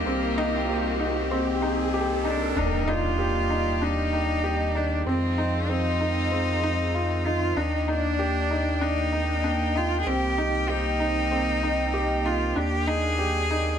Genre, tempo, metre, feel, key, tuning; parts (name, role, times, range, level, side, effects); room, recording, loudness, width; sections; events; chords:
piano and strings electronica; 96 BPM; 4/4; straight; Eb major; A4 = 439 Hz
bright cello; melody; 0.0-13.8 s; Bb3 to Ab4; -28 LUFS; right 1 dB; ping-pong delay
warm studio string section; sustained chords; 0.0-13.8 s; Eb3 to G5; -31 LUFS; left 2 dB
felt-muted upright piano; riff; 0.0-13.8 s; C4 to G4; -28 LUFS; left 1 dB; ping-pong delay
warm sub bass; bass; 0.0-13.8 s; C2 to F2; -29 LUFS; equal
riser and impact; sound effects; 0.0-5.1 s; -32 LUFS; right 1 dB
moderate recital hall reverb, RT60 1.5 s, small room ambience; -22 LUFS; side -8 dB against mid
0.0-2.6 A section; 2.6-13.8 B section
build-up 0.0-2.6; riser 0.0-2.6; filter sweep on string section 0.0-2.6; drop 2.6-13.8; impact 2.6-5.1
0.1 Cm7; 2.6 Ebmaj7; 5.1 Fm7; 7.6 Ebmaj7; 10.1 Cm7; 12.6 Ebmaj7